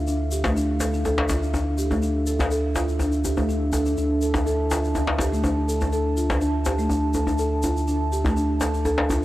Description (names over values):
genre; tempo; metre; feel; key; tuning
afro house; 123 BPM; 4/4; straight; D minor; A4 = 439 Hz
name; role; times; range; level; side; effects
dark analog pad; sustained chords; 0.0-9.2 s; D4 to A5; -28 LUFS; right 2 dB; lush chorus
warm sub bass; bass; 0.0-9.2 s; D2; -25 LUFS; equal; none
buzzing marimba with soft mallets; arpeggios; 0.1-9.2 s; A3 to A4; -26 LUFS; equal; tape echo
egg shaker; percussion; 0.1-9.2 s; none; -38 LUFS; left 3 dB; none
djembe; percussion; 0.4-9.2 s; none; -27 LUFS; left 1 dB; none
room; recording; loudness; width
light reverb, small room ambience; dry, gritty hardware recording, cassette tape; -21 LUFS; side -15 dB against mid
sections
0.0-9.2 A section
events
none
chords
0.0 Dm